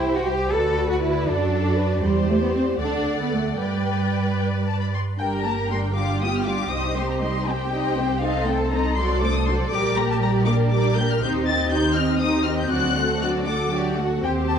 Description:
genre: quick classical-period movement for string orchestra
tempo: 79 BPM (dotted quarters)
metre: 6/8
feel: rubato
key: G major, G minor from 5.2 s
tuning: A4 = 440 Hz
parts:
  - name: dark studio violin section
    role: melody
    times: 0.0-14.6 s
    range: D5 to A6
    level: -28 LUFS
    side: left 6 dB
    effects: none
  - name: warm symphonic violin section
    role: second line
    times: 0.0-14.6 s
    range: Eb4 to Bb5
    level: -29 LUFS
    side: left 3 dB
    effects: none
  - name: warm symphonic viola section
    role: accompaniment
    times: 0.0-14.6 s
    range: F#3 to B4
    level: -26 LUFS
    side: right 1 dB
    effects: none
  - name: rich symphonic cello section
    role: bass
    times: 0.0-14.6 s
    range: G3 to Bb4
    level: -26 LUFS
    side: right 2 dB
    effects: none
  - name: rich symphonic double bass section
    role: bass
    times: 0.0-14.6 s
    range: G1 to G2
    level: -25 LUFS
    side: right 2 dB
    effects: none
room: moderate recital hall reverb, RT60 1.4 s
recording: dark, warm production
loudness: -20 LUFS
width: side -8 dB against mid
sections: 0.0-5.2 A section; 5.2-14.6 B section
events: none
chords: 0.0 C; 0.5 D; 2.0 C/E; 2.8 D; 3.6 G; 5.2 Gm; 6.0 G7; 6.7 Cm; 8.2 Adim/C; 9.0 D7/C; 9.7 Gm/Bb; 11.2 Cm/Eb; 12.7 D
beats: | 0.52 1.27 | 2.03 2.80 | 3.59 4.39 | 5.19 5.96 | 6.72 7.47 | 8.23 8.98 | 9.73 10.48 | 11.22 11.96 | 12.71 13.47 | 14.23

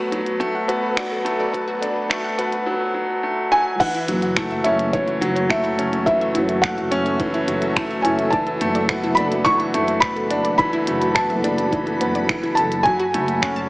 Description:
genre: piano and strings electronica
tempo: 106 BPM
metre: 4/4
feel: straight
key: F# minor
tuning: A4 = 440 Hz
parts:
  - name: granular cloud pad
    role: sustained chords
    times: 0.1-13.7 s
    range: F#3 to B5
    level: -28 LUFS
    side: equal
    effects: built-in reverb, sidechain pumping
  - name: wide unison pluck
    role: arpeggios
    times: 0.0-13.6 s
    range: E4 to A5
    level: -30 LUFS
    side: equal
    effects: sidechain pumping, digital delay
  - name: bright upright piano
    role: riff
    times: 0.0-13.7 s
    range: E3 to A4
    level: -22 LUFS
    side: equal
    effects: digital delay
  - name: minimal click drum kit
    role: drums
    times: 0.1-13.7 s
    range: crash cymbal, finger snaps, hi-hat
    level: -26 LUFS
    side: equal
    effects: high-pass filter on hats, high-pass filter on snare, high-pass filter on cymbals
  - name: electronic kick drum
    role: drums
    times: 0.4-13.5 s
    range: none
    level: -30 LUFS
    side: equal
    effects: none
  - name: felt-muted upright piano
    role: melody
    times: 3.5-13.7 s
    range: C#5 to C#6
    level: -21 LUFS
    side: equal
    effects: digital delay
  - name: dark symphonic double bass section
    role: bass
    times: 4.1-13.7 s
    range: F#1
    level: -27 LUFS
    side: equal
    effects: sidechain pumping
room: moderate scoring stage reverb, RT60 1.7 s, studio ambience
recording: high-pass filter, small speaker sound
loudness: -18 LUFS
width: side -23 dB against mid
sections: 0.0-3.8 A section; 3.8-13.7 B section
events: build-up 0.0-3.8; drop 3.8-13.7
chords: 0.0 Bm7/F#; 3.8 F#m7; 8.3 E7sus4/F#; 12.9 Dmaj7/F#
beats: 0.41 0.97 | 1.54 2.10 2.67 3.24 | 3.80 4.37 4.93 5.50 | 6.07 6.63 7.20 7.76 | 8.33 8.90 9.46 10.03 | 10.59 11.16 11.73 12.29 | 12.86 13.43

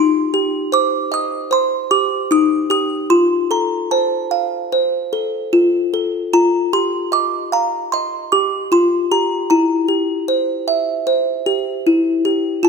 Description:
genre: children's music, lullaby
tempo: 76 BPM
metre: 4/4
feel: rubato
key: unclear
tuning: A4 = 440 Hz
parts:
  - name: music box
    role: solo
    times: 0.0-12.7 s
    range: Eb4 to Eb6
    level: -15 LUFS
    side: equal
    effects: none
room: light reverb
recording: none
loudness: -15 LUFS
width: side -5 dB against mid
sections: 0.0-12.7 A section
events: none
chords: 0.0 Cm/Eb; 3.1 F; 6.3 Ebadd9; 9.5 C/E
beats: 0.72 1.51 2.30 | 3.10 3.90 4.70 5.51 | 6.32 7.13 7.92 8.72 | 9.51 10.29 11.08 11.86 | 12.63

